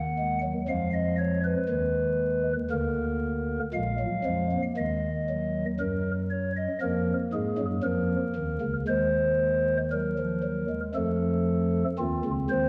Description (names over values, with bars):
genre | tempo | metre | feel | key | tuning
classical, baroque-style 3-part fugue for pipe organ | 58 BPM | 4/4 | straight | Eb minor | A4 = 442 Hz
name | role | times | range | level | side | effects
pipe organ, stopped flute | solo | 0.0-12.7 s | Bb1 to Gb5 | -28 LUFS | equal | none
room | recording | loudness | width
wet concert hall reverb, RT60 1.9 s | worn, warbling old tape, cassette tape, vinyl crackle, warbly pitch drift | -28 LUFS | mono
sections
0.0-12.7 A section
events
none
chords
0.0 Ebm; 0.7 Fm7b5; 2.7 Bb7/D; 4.8 Ebm; 6.8 Bbm/F; 8.9 Cm7b5/Eb; 10.9 F7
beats
0.68 1.69 | 2.71 3.73 4.76 5.79 | 6.81 7.85 8.88 9.92 | 10.95 11.98